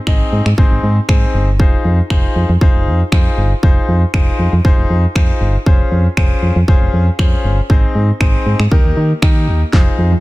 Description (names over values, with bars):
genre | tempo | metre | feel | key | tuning
dance-pop | 118 BPM | 4/4 | straight | F minor | A4 = 440 Hz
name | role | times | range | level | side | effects
bright concert grand piano | accompaniment | 0.1-10.1 s | Bb3 to Eb5 | -20 LUFS | left 3 dB | sidechain pumping
solid FM bass | bass | 0.1-10.2 s | F1 to Eb3 | -14 LUFS | equal | sidechain pumping
pop drum kit | drums | 0.1-9.9 s | finger snaps, kick drum, snare drum | -13 LUFS | equal | soft clipping on snare
wide unison pluck | arpeggios | 9.7-10.2 s | F3 | -23 LUFS | right 2 dB | sidechain pumping, ping-pong delay
room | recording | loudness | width
little or no reverb | dense, heavily limited modern master | -11 LUFS | side -19 dB against mid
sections
0.0-9.7 A section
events
drum fill 9.7-10.2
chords
0.0 Ab; 1.6 Fm7; 5.7 Dbmaj7/F; 7.7 Ab; 8.7 Eb